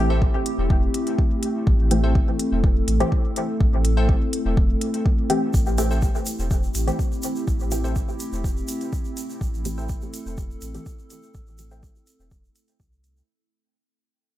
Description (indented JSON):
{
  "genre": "dub techno",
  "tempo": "124 BPM",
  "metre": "4/4",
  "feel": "straight",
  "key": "A minor",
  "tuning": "A4 = 441 Hz",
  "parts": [
    { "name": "warbly tape-like pad", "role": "sustained chords", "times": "0.0-13.2 s", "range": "A3 to A4", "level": "-28 LUFS", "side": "equal", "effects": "chorus, built-in reverb, sidechain pumping" },
    { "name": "filtered dub chord stab", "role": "stabs", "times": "0.0-11.8 s", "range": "E3 to G4", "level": "-27 LUFS", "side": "left 1 dB", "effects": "chorus, phaser, sidechain pumping, dub echo" },
    { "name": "warm sub bass", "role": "bass", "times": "0.0-13.2 s", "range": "E1 to C2", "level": "-23 LUFS", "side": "equal", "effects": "sidechain pumping" },
    { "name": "wavetable chord stab", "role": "riff", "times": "0.1-11.8 s", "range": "A4 to G5", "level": "-35 LUFS", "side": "left 1 dB", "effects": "sidechain pumping, dub echo" },
    { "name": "electronic kick drum", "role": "drums", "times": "0.2-12.9 s", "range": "none", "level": "-22 LUFS", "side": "equal", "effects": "overdrive, small room ambience" },
    { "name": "electronic hi-hat", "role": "drums", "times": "0.5-13.1 s", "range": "none", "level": "-32 LUFS", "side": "left 1 dB", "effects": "small room ambience" },
    { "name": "tube shaker", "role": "percussion", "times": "5.5-13.3 s", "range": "none", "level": "-37 LUFS", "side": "right 3 dB", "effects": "none" }
  ],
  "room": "little or no reverb",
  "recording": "none",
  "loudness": "-20 LUFS",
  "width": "side -14 dB against mid",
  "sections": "0.0-5.5 A section; 5.5-13.3 B section",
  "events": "fade-out 5.5-13.3; filter sweep on synth stab 5.5-13.3",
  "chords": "0.0 Am7"
}